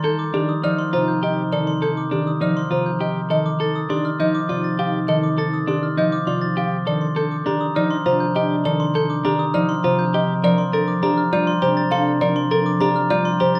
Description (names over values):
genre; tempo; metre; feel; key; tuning
classical, minimalist pattern music; 101 BPM; 3/4; straight; F mixolydian; A4 = 442 Hz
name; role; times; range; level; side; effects
folk marimba with soft mallets; melody; 0.0-13.6 s; G4 to F5; -26 LUFS; equal; none
concert harp; accompaniment; 0.0-13.6 s; C3 to G3; -25 LUFS; equal; none
clean electric guitar; arpeggios; 0.0-13.6 s; D4 to Bb4; -29 LUFS; equal; none
glockenspiel with hard plastic mallets; arpeggios; 0.0-13.6 s; Bb5 to A6; -27 LUFS; equal; none
dark French horn; second line; 0.1-13.6 s; D4 to Eb4; -30 LUFS; equal; none
room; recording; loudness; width
moderate large studio reverb, RT60 0.9 s; none; -20 LUFS; mono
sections
0.0-13.6 A section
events
none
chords
0.0 Cmadd9; 3.3 F9; 6.9 Ebmaj9#11; 10.4 Bbmaj9